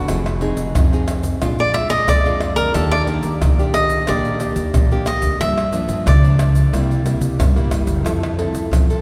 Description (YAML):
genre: samba and choro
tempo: 90 BPM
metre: 4/4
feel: straight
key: unclear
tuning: A4 = 440 Hz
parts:
  - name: nylon-string guitar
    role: accompaniment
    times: 0.0-9.0 s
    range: F2 to A4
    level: -25 LUFS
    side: equal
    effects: none
  - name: upright bass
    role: bass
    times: 0.0-9.0 s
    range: F1 to F3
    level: -23 LUFS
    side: equal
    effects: none
  - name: tube shaker, surdo, pandeiro and tamborim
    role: percussion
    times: 0.1-9.0 s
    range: none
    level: -22 LUFS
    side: equal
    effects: none
  - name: cavaquinho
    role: melody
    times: 1.6-7.0 s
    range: A4 to E5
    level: -23 LUFS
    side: equal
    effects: none
room: wet church reverb, RT60 3.5 s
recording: recorded in a church or concert hall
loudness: -17 LUFS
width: mono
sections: 0.0-9.0 A section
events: cavaquinho solo 0.0-9.0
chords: 0.1 Fm7; 1.4 Bb7; 2.8 Ebmaj7; 5.4 Gm7; 6.7 C7; 8.1 Fmaj7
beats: | 0.10 0.76 1.43 2.09 | 2.75 3.42 4.08 4.74 | 5.41 6.07 6.73 7.39 | 8.06 8.72